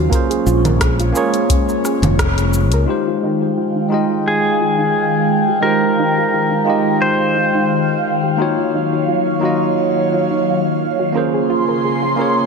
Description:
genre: sunset chillout.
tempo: 87 BPM.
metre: 4/4.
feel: swing 54% on 16ths.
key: F minor.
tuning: A4 = 440 Hz.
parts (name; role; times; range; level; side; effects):
tine electric piano; accompaniment; 0.0-12.5 s; Gb3 to G5; -19 LUFS; moving between left 8 dB and right 10 dB; auto-pan, tape echo.
airy breathy pad; sustained chords; 0.0-12.5 s; Db3 to C6; -18 LUFS; equal; chorus, phaser.
soft round pluck; arpeggios; 0.0-12.4 s; Eb4 to Bb4; -25 LUFS; right 2 dB; chorus, tape echo.
modern bright fingered electric bass; bass; 0.0-2.9 s; F1 to Db2; -16 LUFS; left 1 dB; none.
deep house drum kit; drums; 0.1-2.8 s; congas, hi-hat, rim click, shaker; -22 LUFS; right 1 dB; small room ambience.
electronic kick drum; drums; 0.1-2.3 s; none; -18 LUFS; left 1 dB; overdrive, small room ambience.
pedal steel guitar; melody; 4.3-8.0 s; Ab4 to C5; -18 LUFS; left 2 dB; tape echo.
room: moderate concert hall reverb, RT60 2.0 s.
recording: none.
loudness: -14 LUFS.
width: side -4 dB against mid.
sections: 0.0-2.9 A section; 2.9-12.5 B section.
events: band accent 2.2-2.5; filter sweep on synth arpeggio sound 2.9-12.5.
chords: 0.1 Bbm9; 2.9 Fm9; 8.4 Ebm9; 11.2 Bbm9.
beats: | 0.12 0.81 1.50 2.19 | 2.88 3.57 4.26 4.95 | 5.64 6.33 7.02 7.71 | 8.39 9.09 9.78 10.46 | 11.15 11.84.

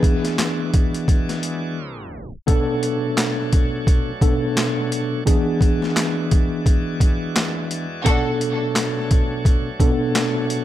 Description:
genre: hip hop, boom-bap hip-hop.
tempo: 86 BPM.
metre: 4/4.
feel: swing 59% on 16ths.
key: B dorian.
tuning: A4 = 440 Hz.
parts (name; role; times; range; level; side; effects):
mellow tine electric piano; accompaniment; 0.0-10.6 s; B2 to A4; -22 LUFS; equal; medium stereo tremolo, cassette tape, high-pass filter, low-pass filter.
bright tonewheel organ; sustained chords; 0.0-10.6 s; E2 to D5; -31 LUFS; equal; overdrive, slow rotary speaker, high-pass filter, low-pass filter.
boom bap sampler-style drum kit; drums; 0.0-10.6 s; handclaps, hi-hat, kick drum, snare drum; -18 LUFS; equal; overdrive.
warm studio string section; stabs; 8.0-8.3 s; D4 to A4; -28 LUFS; right 1 dB; high-pass filter, low-pass filter, digital delay.
room: digital ambience.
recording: tape stop.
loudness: -18 LUFS.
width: side -13 dB against mid.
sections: 0.0-2.5 A section; 2.5-10.6 A section.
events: break 1.8-2.5; tape stop 1.8-2.5.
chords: 0.0 E7; 2.5 Bm7; 5.3 E7; 8.1 Bm7.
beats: 0.38 1.08 1.78 | 2.48 3.17 3.87 4.57 | 5.27 5.96 6.66 7.36 | 8.06 8.76 9.45 10.15.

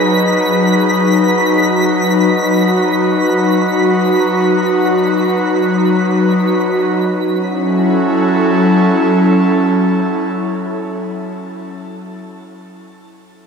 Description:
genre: ambient.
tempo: free time.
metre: none.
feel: none.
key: F# dorian.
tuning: A4 = 438 Hz.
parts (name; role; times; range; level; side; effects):
airy breathy pad; sustained chords; 0.0-11.3 s; F#3 to B4; -13 LUFS; equal; chorus, shimmer reverb.
bowed-like drone; drone; 0.0-10.8 s; F#3 to F#4; -20 LUFS; left 3 dB; built-in reverb.
twinkling granular texture; texture; 0.0-7.1 s; B6; -22 LUFS; right 2 dB; built-in reverb, shimmer reverb.
room: wet cathedral reverb, RT60 6.3 s.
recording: in a vast, echoing space, cassette tape.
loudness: -11 LUFS.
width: side -6 dB against mid.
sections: 0.0-7.1 A section; 7.1-11.1 B section.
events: none.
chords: 0.0 G#m/F#; 7.1 F#m7.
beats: free time.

